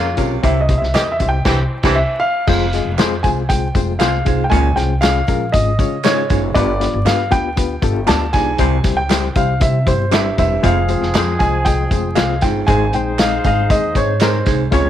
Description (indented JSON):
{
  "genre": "uptempo 1960s-style soul",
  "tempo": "118 BPM",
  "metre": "4/4",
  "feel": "straight",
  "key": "F minor",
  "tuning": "A4 = 440 Hz",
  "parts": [
    { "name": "warm horn section", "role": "second line", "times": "0.0-2.0, 10.6-14.9 s", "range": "Db3 to Db5", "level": "-24 LUFS", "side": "equal", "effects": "none" },
    { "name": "barky reed electric piano", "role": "accompaniment", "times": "0.0-14.9 s", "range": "G3 to Eb5", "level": "-21 LUFS", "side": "left 8 dB", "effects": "overdrive, fast tremolo" },
    { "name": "upright bass", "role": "bass", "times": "0.0-14.9 s", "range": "E1 to Db3", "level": "-19 LUFS", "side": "equal", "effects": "transformer saturation" },
    { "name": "warm baritone saxophone", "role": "riff", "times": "0.2-14.9 s", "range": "F2 to C3", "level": "-23 LUFS", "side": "right 10 dB", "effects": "none" },
    { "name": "vintage drum kit", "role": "drums", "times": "0.2-14.8 s", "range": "crash cymbal, hi-hat, kick drum, snare drum", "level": "-18 LUFS", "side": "equal", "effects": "none" },
    { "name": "tambourine and handclaps", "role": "percussion", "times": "0.2-14.8 s", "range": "none", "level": "-30 LUFS", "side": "right 11 dB", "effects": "none" },
    { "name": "dark grand piano", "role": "melody", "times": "0.4-14.9 s", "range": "C5 to A5", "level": "-20 LUFS", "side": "right 1 dB", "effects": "none" }
  ],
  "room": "moderate spring reverb, RT60 1.7 s",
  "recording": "1960s-style stereo with parts hard left and right, vinyl crackle",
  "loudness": "-13 LUFS",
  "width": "side -11 dB against mid",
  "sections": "0.0-2.5 A section; 2.5-14.9 B section",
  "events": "grand piano solo 0.0-2.5; band accent 1.5-2.5",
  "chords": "0.4 C; 2.5 Fm; 4.5 Db; 6.6 G7; 8.6 C; 10.6 Fm; 12.7 Ab",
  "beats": "| 0.44 0.95 1.46 1.97 | 2.48 2.99 3.50 4.01 | 4.52 5.03 5.54 6.04 | 6.55 7.07 7.58 8.09 | 8.60 9.11 9.62 10.13 | 10.64 11.15 11.66 12.17 | 12.68 13.19 13.70 14.21 | 14.72"
}